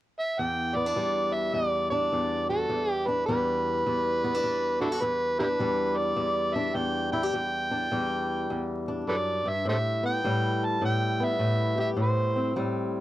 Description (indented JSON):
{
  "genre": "acoustic country blues, solo or duo",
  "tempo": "104 BPM",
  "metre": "4/4",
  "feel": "swing 65% on 8ths",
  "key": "E minor",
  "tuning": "A4 = 439 Hz",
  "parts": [
    { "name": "overdriven harmonica", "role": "melody", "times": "0.2-12.5 s", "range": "D4 to A5", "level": "-27 LUFS", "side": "right 1 dB", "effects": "none" },
    { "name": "fingerpicked swing-style acoustic guitar", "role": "accompaniment", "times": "0.4-13.0 s", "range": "E2 to G4", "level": "-28 LUFS", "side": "left 1 dB", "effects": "none" }
  ],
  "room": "moderate booth ambience, RT60 0.3 s",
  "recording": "dry, close 1970s-style studio recording, vinyl crackle",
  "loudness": "-25 LUFS",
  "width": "side -14 dB against mid",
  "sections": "0.4-13.0 A section",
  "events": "none",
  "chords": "0.4 Em7; 9.7 Am9"
}